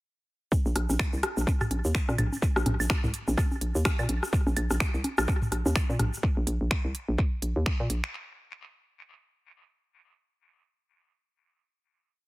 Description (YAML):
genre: minimal techno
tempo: 126 BPM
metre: 4/4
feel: swing 58% on 16ths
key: unclear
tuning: A4 = 443 Hz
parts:
  - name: electronic kick drum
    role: drums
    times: 0.5-7.8 s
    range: none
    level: -27 LUFS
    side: equal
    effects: none
  - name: booming analog drum machine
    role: percussion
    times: 0.5-6.1 s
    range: bongos, claves, rim click, toms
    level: -30 LUFS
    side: equal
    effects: tape echo
  - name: tube shaker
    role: percussion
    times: 0.5-6.2 s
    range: none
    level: -41 LUFS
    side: right 2 dB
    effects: none
  - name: hollow knocking FM bass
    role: bass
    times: 0.7-8.0 s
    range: Bb1 to Bb2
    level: -28 LUFS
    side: equal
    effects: sidechain pumping
  - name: house drum kit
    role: drums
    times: 0.8-8.1 s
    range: finger snaps, hi-hat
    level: -32 LUFS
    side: equal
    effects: dub echo
room: digital ambience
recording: echo-heavy mix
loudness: -25 LUFS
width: side -20 dB against mid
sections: 0.5-8.1 drop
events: drop 0.5-8.1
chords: none